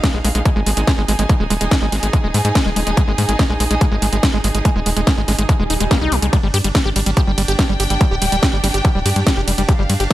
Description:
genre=psychedelic trance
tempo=143 BPM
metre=4/4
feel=straight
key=unclear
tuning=A4 = 440 Hz
part: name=overdriven acid bass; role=riff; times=0.0-10.1 s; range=G3 to G4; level=-22 LUFS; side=moving between left 4 dB and right 4 dB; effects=distortion, auto-pan, sidechain pumping, tape echo
part: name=electronic kick drum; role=drums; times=0.0-10.1 s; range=none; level=-16 LUFS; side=equal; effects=distortion, overdrive, small room reverb
part: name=techno drum kit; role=drums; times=0.0-10.1 s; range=hi-hat, ride cymbal, snare drum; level=-22 LUFS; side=equal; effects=overdrive, small room reverb
part: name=warm studio string section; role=texture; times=0.0-10.1 s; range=D4 to Ab5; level=-24 LUFS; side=right 1 dB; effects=sidechain pumping
part: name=tight sequencer bass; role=bass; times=0.1-10.1 s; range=D1 to Ab2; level=-19 LUFS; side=equal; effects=none
part: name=swell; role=sound effects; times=5.6-6.3 s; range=none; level=-30 LUFS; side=right 4 dB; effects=none
room=digital ambience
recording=none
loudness=-14 LUFS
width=side -15 dB against mid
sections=0.0-10.1 A section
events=swell 5.6-6.3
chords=0.0 Ab5; 6.3 G5

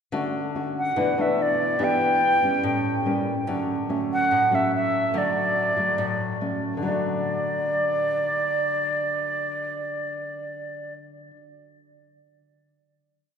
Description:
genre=bossa nova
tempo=144 BPM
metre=4/4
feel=straight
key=D major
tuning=A4 = 443 Hz
part: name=nylon-string guitar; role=accompaniment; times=0.1-11.4 s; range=A2 to G4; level=-26 LUFS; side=left 2 dB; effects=none
part: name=reedy silver concert flute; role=melody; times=0.8-10.9 s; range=D5 to G5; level=-23 LUFS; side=right 1 dB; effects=none
room=wet church reverb, RT60 3.2 s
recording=recorded in a church or concert hall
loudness=-22 LUFS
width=side -7 dB against mid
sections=0.1-6.8 A section; 6.8-10.2 final chord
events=none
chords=0.1 Dmaj7; 1.0 Bm7; 1.8 Em7; 2.6 A7b9; 3.5 Dmaj7; 6.8 D

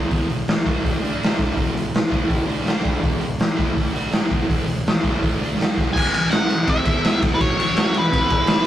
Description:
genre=garage rock duo or trio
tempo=165 BPM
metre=4/4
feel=straight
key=unclear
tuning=A4 = 438 Hz
part: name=thick fuzz guitar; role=riff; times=0.0-8.7 s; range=E2 to F#4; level=-24 LUFS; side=equal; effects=distortion
part: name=raw garage drum kit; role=drums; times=0.1-8.6 s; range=crash cymbal, hi-hat, kick drum, ride cymbal, snare drum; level=-19 LUFS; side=equal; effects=none
part: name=octave-fuzz lead guitar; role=melody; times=5.9-8.6 s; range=B4 to G#5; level=-22 LUFS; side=equal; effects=distortion
room=light reverb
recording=rough rehearsal-room recording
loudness=-18 LUFS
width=side -12 dB against mid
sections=0.0-6.0 A section; 6.0-8.7 B section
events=none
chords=0.0 E5; 1.0 D5; 1.4 E5; 2.5 D5; 2.9 E5; 6.0 B5; 6.9 E5; 7.2 B5; 8.3 E5

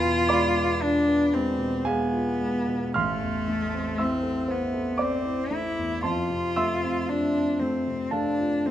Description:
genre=classical, romantic duo for cello and grand piano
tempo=53-60 BPM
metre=3/4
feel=rubato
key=A minor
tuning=A4 = 438 Hz
part: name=rich cello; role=melody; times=0.0-8.7 s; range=A3 to F4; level=-25 LUFS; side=left 1 dB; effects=none
part: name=dark concert grand piano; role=accompaniment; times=0.0-8.7 s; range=A1 to F6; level=-27 LUFS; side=right 2 dB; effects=none
room=moderate recital hall reverb, RT60 1.6 s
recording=none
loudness=-23 LUFS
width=side -11 dB against mid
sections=0.0-8.7 A section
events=none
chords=0.0 E7b9; 3.0 Am; 6.0 Fmaj7

